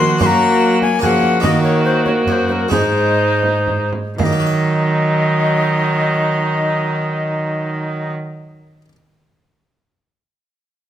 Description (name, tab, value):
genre	classical, renaissance-style consort dance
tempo	113-149 BPM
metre	3/4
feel	straight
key	Eb dorian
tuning	A4 = 440 Hz
part	breathy tenor recorder	melody	0.0-8.1 s	Bb4 to C6	-20 LUFS	left 4 dB	none
part	warm cor anglais	second line	0.0-8.1 s	Eb4 to Gb4	-22 LUFS	right 3 dB	none
part	harpsichord	accompaniment	0.0-9.0 s	Gb2 to Gb5	-23 LUFS	right 2 dB	none
part	rich viola	accompaniment	0.0-8.1 s	Gb3 to Bb3	-21 LUFS	left 1 dB	none
part	rich cello	bass	0.0-8.1 s	Gb2 to Gb3	-20 LUFS	right 2 dB	none
part	frame drum	percussion	0.0-4.4 s	none	-23 LUFS	right 4 dB	none
room	moderate stone room reverb, RT60 1.4 s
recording	none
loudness	-14 LUFS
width	side -11 dB against mid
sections	0.0-4.2 A section; 4.2-7.4 B section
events	slowing down 0.8-4.2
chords	0.2 Gb; 1.4 Ebm; 2.7 Ab; 4.2 Ebm